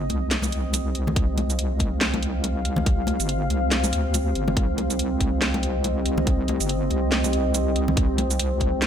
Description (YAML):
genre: deep dubstep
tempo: 141 BPM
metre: 4/4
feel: swing 58% on 16ths, half-time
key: C minor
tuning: A4 = 440 Hz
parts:
  - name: deep dark ambient pad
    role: sustained chords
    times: 0.0-8.9 s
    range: C4 to F5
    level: -27 LUFS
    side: right 1 dB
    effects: chorus, built-in reverb
  - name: wobble bass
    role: bass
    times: 0.0-8.9 s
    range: G1 to D2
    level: -25 LUFS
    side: equal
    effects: chorus
  - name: garage drum kit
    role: drums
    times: 0.1-8.9 s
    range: hi-hat, shaker, snare drum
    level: -26 LUFS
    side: right 1 dB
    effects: none
  - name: congas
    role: percussion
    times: 0.1-8.7 s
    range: none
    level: -30 LUFS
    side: left 3 dB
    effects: none
  - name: electronic kick drum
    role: drums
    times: 1.2-8.7 s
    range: none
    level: -23 LUFS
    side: equal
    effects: none
room: light reverb, digital ambience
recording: none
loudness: -21 LUFS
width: side -9 dB against mid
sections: 0.0-8.9 A section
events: none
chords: 0.0 Cm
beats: 0.31 0.74 | 1.16 1.59 2.01 2.44 | 2.87 3.29 3.72 4.14 | 4.57 4.99 5.42 5.84 | 6.27 6.70 7.12 7.55 | 7.97 8.40 8.82